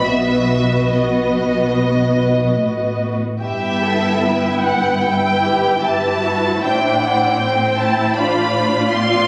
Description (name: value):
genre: classical, slow romantic movement for string orchestra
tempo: 70-79 BPM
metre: 4/4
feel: rubato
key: E minor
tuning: A4 = 440 Hz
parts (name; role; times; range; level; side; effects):
- dark studio violin section; second line; 0.0-9.3 s; G4 to G5; -22 LUFS; equal; none
- warm studio viola section; accompaniment; 0.0-9.3 s; B3 to G4; -23 LUFS; equal; none
- warm studio cello section; bass; 0.0-9.3 s; G2 to B2; -24 LUFS; equal; none
- warm studio double bass section; bass; 0.0-9.3 s; G1 to B1; -28 LUFS; equal; none
- rich studio violin section; melody; 0.1-9.3 s; D#5 to C6; -23 LUFS; equal; none
room: wet scoring stage reverb, RT60 1.5 s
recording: recorded on a phone in the room, club reverb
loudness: -17 LUFS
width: mono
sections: 0.0-9.3 A section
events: none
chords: 0.0 B; 3.4 Em/G; 6.6 Am7; 8.2 F/A